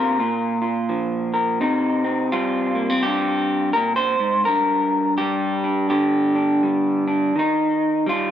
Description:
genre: folk, solo fingerstyle acoustic guitar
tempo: 83 BPM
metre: 4/4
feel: swing 60% on 8ths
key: C minor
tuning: A4 = 436 Hz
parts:
  - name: electric guitar through a small old amp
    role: solo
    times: 0.0-8.3 s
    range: G2 to C5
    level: -18 LUFS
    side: equal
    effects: spring reverb
room: light reverb, digital ambience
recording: dry, close 1970s-style studio recording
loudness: -18 LUFS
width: side -10 dB against mid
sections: 0.0-1.6 A section; 1.6-8.3 B section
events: none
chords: 0.2 Bb5; 1.6 Cm; 4.5 Gm; 7.4 Eb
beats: 0.17 0.89 | 1.60 2.32 3.04 3.76 | 4.48 5.20 5.92 6.64 | 7.36 8.08

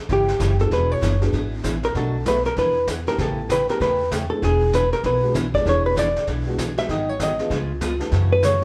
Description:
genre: country, western swing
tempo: 194 BPM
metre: 4/4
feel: swing 62% on 8ths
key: E mixolydian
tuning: A4 = 442 Hz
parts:
  - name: hollow-body jazz guitar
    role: melody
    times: 0.1-8.6 s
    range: G4 to E5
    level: -23 LUFS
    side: equal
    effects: none
  - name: picked steel-string acoustic guitar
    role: accompaniment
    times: 0.1-8.5 s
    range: B2 to G#4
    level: -30 LUFS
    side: equal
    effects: none
  - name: upright bass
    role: bass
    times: 0.1-8.6 s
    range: E1 to F#2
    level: -26 LUFS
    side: equal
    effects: none
  - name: vintage brush drum kit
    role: drums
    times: 0.1-8.6 s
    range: brushed snare drum, hi-hat, kick drum, snare drum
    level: -32 LUFS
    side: equal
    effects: none
  - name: dark upright piano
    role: accompaniment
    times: 0.6-8.6 s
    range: G#3 to B4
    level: -32 LUFS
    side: equal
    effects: none
room: wet large studio reverb, RT60 0.8 s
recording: band playing live in one room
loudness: -21 LUFS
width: mono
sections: 0.0-8.6 A section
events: hollow-body jazz guitar solo 0.0-8.6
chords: 0.0 A9; 0.7 E9; 1.9 Bm7; 2.6 E7; 3.2 A9; 4.4 E9; 6.9 G#m7; 7.5 C#7; 8.1 F#m7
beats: 0.10 0.41 | 0.71 1.02 1.33 1.64 | 1.95 2.26 2.57 2.88 | 3.19 3.49 3.80 4.11 | 4.42 4.73 5.04 5.34 | 5.65 5.96 6.27 6.58 | 6.89 7.19 7.50 7.81 | 8.12 8.43

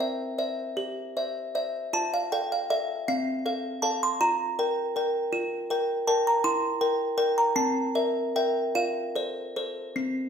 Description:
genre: classical, lullaby for music box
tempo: 53 BPM (dotted quarters)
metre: 6/8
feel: uneven beats, rubato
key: F major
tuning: A4 = 440 Hz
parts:
  - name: music box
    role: solo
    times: 0.0-10.3 s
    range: C4 to C6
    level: -25 LUFS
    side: equal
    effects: none
room: wet large studio reverb, RT60 1.2 s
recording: band playing live in one room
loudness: -25 LUFS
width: side -7 dB against mid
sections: 0.0-10.3 A section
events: none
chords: 0.0 C; 1.9 F; 4.2 Gm7/F; 6.4 C7/E; 7.6 C7; 8.8 F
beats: 0.77 | 1.93 3.08 | 4.21 5.33 | 6.44 7.58 | 8.76 9.96

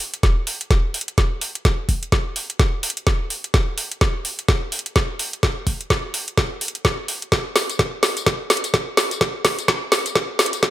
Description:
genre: house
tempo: 127 BPM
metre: 4/4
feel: swing 59% on 16ths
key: none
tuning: none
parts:
  - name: garage drum kit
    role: drums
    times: 0.0-10.7 s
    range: hi-hat, snare drum, tambourine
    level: -20 LUFS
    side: equal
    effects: none
  - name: electronic kick drum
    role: drums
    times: 0.2-10.7 s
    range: none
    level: -20 LUFS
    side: equal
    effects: none
room: moderate digital room reverb, RT60 1.0 s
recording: high-pass filter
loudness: -18 LUFS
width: side -14 dB against mid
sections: 0.0-10.7 A section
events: build-up 0.0-10.7; drum fill 0.0-10.7; filter sweep 0.0-10.7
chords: none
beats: 0.23 0.71 1.18 | 1.65 2.12 2.60 3.07 | 3.54 4.01 4.49 4.96 | 5.43 5.90 6.38 6.85 | 7.32 7.79 8.27 8.74 | 9.21 9.68 10.15 10.63

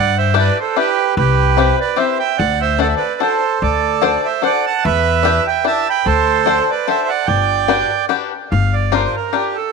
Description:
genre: musette waltz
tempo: 147 BPM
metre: 3/4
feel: swing 55% on 8ths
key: G major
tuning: A4 = 440 Hz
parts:
  - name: accordion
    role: melody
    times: 0.0-9.7 s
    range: G4 to B5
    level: -16 LUFS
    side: right 10 dB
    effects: none
  - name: upright bass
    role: bass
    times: 0.0-9.1 s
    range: G1 to G2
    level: -18 LUFS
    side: left 3 dB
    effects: none
  - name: bluegrass banjo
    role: accompaniment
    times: 0.3-9.6 s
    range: C4 to C5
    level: -19 LUFS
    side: left 15 dB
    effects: none
room: light reverb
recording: 1960s-style stereo with parts hard left and right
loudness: -13 LUFS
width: side -4 dB against mid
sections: 0.0-8.5 A section; 8.5-9.7 B section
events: none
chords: 0.0 Em7/G; 1.2 Cmaj7; 2.4 D7; 4.8 Em7; 6.1 D7; 7.3 Gmaj7; 8.5 Gm7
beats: 0.35 0.76 | 1.16 1.57 1.97 | 2.38 2.79 3.20 | 3.61 4.02 4.43 | 4.84 5.25 5.65 | 6.06 6.46 6.87 | 7.28 7.68 8.10 | 8.51 8.92 9.33

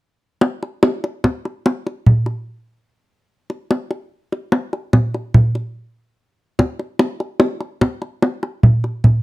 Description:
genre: gamelan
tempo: 73 BPM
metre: 4/4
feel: straight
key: none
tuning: none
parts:
  - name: kendang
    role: percussion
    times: 0.4-9.2 s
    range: none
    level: -14 LUFS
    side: equal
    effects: none
room: light reverb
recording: dry, close 1970s-style studio recording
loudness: -16 LUFS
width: side -19 dB against mid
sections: 0.4-9.2 A section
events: none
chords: none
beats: | 0.43 1.25 2.07 2.89 | 3.71 4.54 5.36 6.18 | 7.00 7.82 8.65

